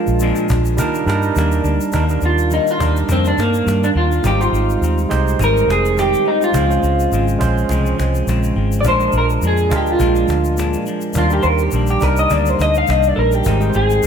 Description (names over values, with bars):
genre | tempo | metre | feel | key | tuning
indie pop, bedroom pop | 104 BPM | 4/4 | swing 55% on 16ths | Eb major | A4 = 440 Hz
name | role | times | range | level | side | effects
electric guitar through a small old amp | melody | 0.0-14.1 s | Bb3 to F5 | -18 LUFS | equal | lush chorus, slapback echo
barky tine electric piano | accompaniment | 0.0-14.1 s | G3 to G5 | -22 LUFS | right 6 dB | overdrive, cassette tape, slapback echo
semi-hollow electric guitar | accompaniment | 0.0-14.1 s | Ab2 to Eb4 | -24 LUFS | left 6 dB | wide subtle chorus, warbly pitch drift, slapback echo
vintage muted fingered electric bass | bass | 0.1-14.1 s | F1 to Eb3 | -18 LUFS | equal | none
cajon | drums | 0.1-14.1 s | none | -27 LUFS | equal | none
egg shaker | percussion | 0.1-14.1 s | none | -36 LUFS | left 12 dB | none
room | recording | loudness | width
moderate recital hall reverb, RT60 1.6 s, small room reverb | big arena sound | -14 LUFS | side -7 dB against mid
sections
0.0-1.9 A section; 1.9-14.1 B section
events
clean electric guitar solo 1.9-14.1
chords
0.0 Bb7; 0.8 Ebmaj7; 4.2 Abmaj7; 6.5 Dbmaj7; 8.9 Bb7; 11.2 Ebmaj7; 13.5 Abmaj7